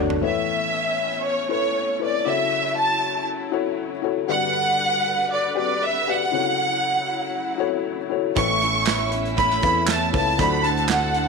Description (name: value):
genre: piano-driven pop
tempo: 118 BPM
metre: 4/4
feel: straight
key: unclear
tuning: A4 = 442 Hz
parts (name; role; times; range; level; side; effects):
- warm studio violin section; second line; 0.0-0.2, 8.4-11.3 s; E4 to A5; -31 LUFS; left 1 dB; none
- felt-muted upright piano; accompaniment; 0.0-11.3 s; G2 to E5; -26 LUFS; left 13 dB; none
- warm studio string section; sustained chords; 0.0-11.3 s; D3 to F#5; -34 LUFS; left 1 dB; none
- fingerpicked steel-string acoustic guitar; riff; 0.0-0.2, 8.4-11.3 s; D3 to C#5; -29 LUFS; right 15 dB; none
- picked electric bass; bass; 0.0-0.2, 8.4-11.3 s; G1 to E2; -27 LUFS; right 1 dB; none
- modern studio drum kit; drums; 0.1-0.2, 8.4-11.3 s; handclaps, hi-hat, kick drum, snare drum, toms; -26 LUFS; right 5 dB; none
- warm symphonic violin section; melody; 0.2-11.3 s; C#5 to C#6; -21 LUFS; right 1 dB; slapback echo
room: moderate echo chamber reverb, RT60 1.6 s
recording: 1960s-style stereo with parts hard left and right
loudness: -20 LUFS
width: side -4 dB against mid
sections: 0.2-11.3 A section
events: drum fill 0.0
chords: 0.2 Aadd9; 2.3 F#m7; 4.3 Gmaj7; 6.3 F#m7; 8.4 Aadd9; 10.4 D7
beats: | 0.23 0.74 1.25 1.76 | 2.26 2.77 3.28 3.79 | 4.30 4.80 5.31 5.82 | 6.33 6.84 7.35 7.86 | 8.36 8.87 9.38 9.89 | 10.39 10.90